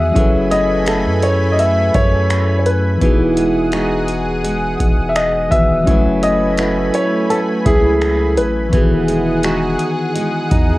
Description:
contemporary R&B; 84 BPM; 4/4; straight; F# dorian; A4 = 440 Hz
clear concert grand piano; melody; 0.0-9.0 s; G#4 to E5; -18 LUFS; left 1 dB; cassette tape
bell-like tine electric piano; accompaniment; 0.0-10.8 s; D#3 to G#5; -20 LUFS; left 2 dB; cassette tape
lush unison pad; sustained chords; 0.0-10.8 s; A3 to D#6; -23 LUFS; right 1 dB; chorus, cassette tape
flamenco guitar; arpeggios; 0.0-10.8 s; E3 to A4; -21 LUFS; right 3 dB; cassette tape, analog delay
long sustained 808-style bass; bass; 0.0-10.8 s; E1 to F#2; -20 LUFS; equal
booming analog drum machine; drums; 0.2-10.7 s; finger snaps, hi-hat, kick drum; -18 LUFS; equal; cassette tape
digital ambience; home recording on cassette; -13 LUFS; side -18 dB against mid
0.0-10.8 A section
tine electric piano fill 10.5
0.2 F#m11; 3.0 Emaj9; 5.9 F#m11; 8.7 Emaj9

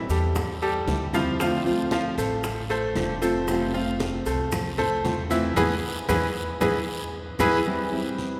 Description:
latin, Cuban son and guajira; 115 BPM; 4/4; straight; A4 = 439 Hz
nylon-string guitar; accompaniment; 0.0-8.4 s; C3 to F4; -30 LUFS; equal
upright bass; bass; 0.0-7.6 s; F1 to E2; -34 LUFS; equal
bright grand piano; arpeggios; 0.1-7.6 s; E3 to F5; -29 LUFS; equal
bongos; percussion; 0.1-7.5 s; -40 LUFS; equal
congas; percussion; 0.1-8.4 s; -37 LUFS; equal
guiro; percussion; 0.1-8.4 s; -43 LUFS; equal
maracas; percussion; 0.1-7.5 s; -46 LUFS; equal
claves; percussion; 0.4-7.9 s; -44 LUFS; equal
wet cathedral reverb, RT60 4.2 s; recorded in a church or concert hall; -25 LUFS; mono
0.0-7.7 A section
band accent 5.6-7.7; drum fill 6.6-7.7
0.0 Am7; 1.4 Dm7; 3.5 Fmaj7; 5.6 E; 7.7 D9sus4 (rootless)

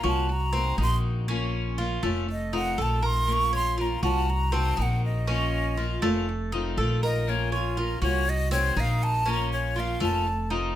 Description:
latin; 120 BPM; 4/4; straight; Bb harmonic minor; A4 = 441 Hz
breathy jazz flute; melody; 0.0-10.5 s; F4 to Db6; -29 LUFS; equal
fingerpicked steel-string acoustic guitar; accompaniment; 0.0-10.8 s; Eb3 to Gb4; -32 LUFS; left 6 dB
Cuban tres; arpeggios; 0.0-10.7 s; A3 to Db5; -31 LUFS; right 3 dB
upright bass; bass; 0.0-10.7 s; F1 to C2; -27 LUFS; equal
light reverb; -24 LUFS; side -12 dB against mid
0.0-10.8 A section
flute solo 0.0-10.8
0.3 Cm7b5; 1.3 Bbm; 2.3 F7; 3.3 Bbm; 4.3 Cm7b5; 5.3 Bbm; 6.3 F7; 7.3 Bbm; 8.3 Cm7b5; 9.3 Bbm

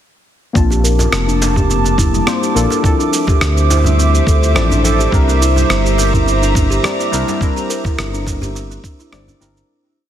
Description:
organic downtempo; 105 BPM; 4/4; swing 53% on 16ths; C mixolydian; A4 = 439 Hz
deep mellow chord stab; accompaniment; 0.5-9.7 s; F3 to A5; -21 LUFS; left 3 dB; chorus, sidechain pumping, digital delay
airy breathy pad; sustained chords; 0.8-9.7 s; Bb3 to D6; -20 LUFS; right 2 dB; chorus, sidechain pumping
buzzing kalimba; arpeggios; 0.6-9.7 s; G3 to C5; -20 LUFS; equal; low-pass filter, digital delay
smooth synth bass; bass; 0.6-9.6 s; F1 to D2; -15 LUFS; equal
electronic cabasa and rim click; drums; 0.6-9.7 s; -21 LUFS; right 2 dB; soft clipping on snare
electronic kick drum; drums; 0.6-9.0 s; -16 LUFS; equal
djembe; percussion; 0.7-9.5 s; -26 LUFS; left 1 dB
light reverb, digital ambience; dense, heavily limited modern master; -12 LUFS; side -10 dB against mid
0.6-9.7 groove
filter sweep on kalimba 0.6-9.7; fade-out 6.6-9.7
0.6 Bbmaj7; 2.8 Dm9; 5.1 C9

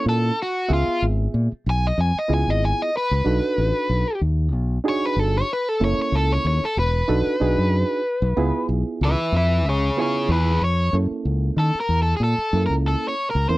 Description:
straight-eighth soul blues; 94 BPM; 4/4; swing 55% on 16ths; A4 = 438 Hz
overdriven electric guitar; melody; 0.0-13.6 s; E#4 to G#5; -23 LUFS; left 1 dB
reed electric piano; accompaniment; 0.0-13.6 s; A#3 to E5; -25 LUFS; right 4 dB
fingered electric bass; bass; 0.1-13.6 s; E1 to D#3; -20 LUFS; equal
little or no reverb; dry, close 1970s-style studio recording; -19 LUFS; side -18 dB against mid
0.0-10.9 A section; 10.9-13.6 B section
overdriven electric guitar solo 0.0-10.9
0.0 F#7#9; 0.7 C#7#9; 3.3 B7#9; 5.8 F#7#9; 7.1 B7#9; 8.4 C#7#9; 10.9 F#7#9

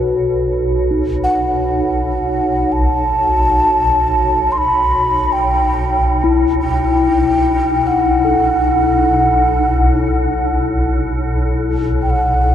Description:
world meditative, free-time meditation music; free time; A4 = 440 Hz
breathy mellow low xiao; melody; 0.0-12.5 s; B4 to C6; -16 LUFS; equal
swarming drone; drone; 0.0-12.5 s; B1; -18 LUFS; equal; built-in reverb
bronze singing bowl; texture; 0.0-12.5 s; D#4 to A4; -19 LUFS; left 3 dB
wet huge ambient reverb, RT60 6.2 s; dark, warm production; -13 LUFS; side -10 dB against mid
0.5-12.5 A section

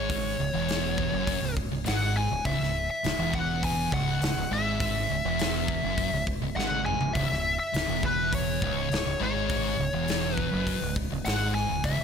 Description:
stoner and doom metal; 102 BPM; 4/4; straight; C# minor; A4 = 440 Hz
fuzz lead guitar; melody; 0.0-12.0 s; B4 to G#5; -30 LUFS; left 2 dB; wah, distortion, digital delay
thick fuzz guitar; riff; 0.0-12.0 s; C#2 to G#2; -33 LUFS; left 12 dB; distortion
thick fuzz guitar; riff; 0.0-12.0 s; C#2 to G#2; -32 LUFS; right 10 dB; distortion
fingered electric bass; bass; 0.0-12.0 s; C#1 to G#1; -34 LUFS; equal; overdrive
big rock drum kit; drums; 0.1-12.0 s; hi-hat, kick drum, snare drum, toms; -32 LUFS; left 1 dB
small room ambience; -25 LUFS; side -7 dB against mid
0.0-12.0 A section
drum fill 6.6-7.1
0.0 C#m

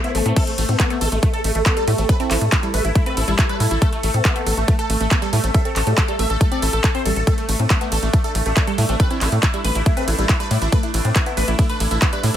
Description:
psychedelic trance; 139 BPM; 4/4; straight; A minor; A4 = 443 Hz
supersaw stab; melody; 0.0-12.4 s; A3 to E5; -26 LUFS; equal; phaser, sidechain pumping, digital delay
bubbling stepped-filter texture; sustained chords; 0.0-12.4 s; A3 to C5; -27 LUFS; right 1 dB; chorus, built-in reverb, sidechain pumping
woody wave-folded pluck; riff; 0.0-12.3 s; G3 to A4; -26 LUFS; moving between left 10 dB and right 8 dB; chorus, auto-pan, sidechain pumping, digital delay
big-room dance drum kit; drums; 0.0-12.4 s; crash cymbal, handclaps, hi-hat, ride cymbal; -25 LUFS; right 1 dB; overdrive
tight sequencer bass; bass; 0.1-12.4 s; A1 to A2; -20 LUFS; equal
electronic kick drum; drums; 0.4-12.1 s; -18 LUFS; equal; overdrive
formant-sweep wobble bass; second line; 2.0-6.3, 8.9-12.4 s; G3 to C4; -35 LUFS; right 4 dB
little or no reverb; -16 LUFS; side -10 dB against mid
0.0-12.4 A section
0.0 A5

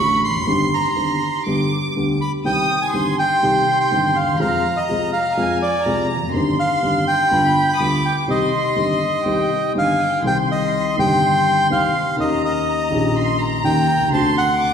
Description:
tango; 123 BPM; 4/4; rubato; C minor; A4 = 440 Hz
bandoneon; melody; 0.0-14.7 s; D5 to Db6; -19 LUFS; equal
rich chamber violin section; second line; 0.0-14.7 s; G5 to Eb6; -24 LUFS; right 1 dB
dark concert grand piano; accompaniment; 0.0-14.7 s; G1 to Ab4; -20 LUFS; left 1 dB
wet scoring stage reverb, RT60 1.7 s; recorded in a church or concert hall; -16 LUFS; side -7 dB against mid
0.0-10.2 A section; 10.2-14.7 B section
0.5 Cm/G; 1.5 G; 2.4 Cm; 4.4 Fm; 6.3 Cm/G; 7.3 G7; 8.3 Cm; 12.2 Eb7; 14.1 D7

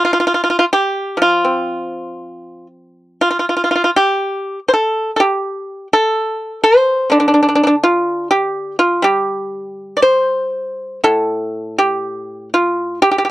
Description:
chinese traditional, Chinese solo plucked strings; 61 BPM; 2/4; rubato; G shang mode; A4 = 440 Hz
pipa; solo; 0.0-13.3 s; A2 to D5; -14 LUFS; equal
little or no reverb; dry, close 1970s-style studio recording; -13 LUFS; side -16 dB against mid
0.0-11.0 A section; 11.0-13.3 B section

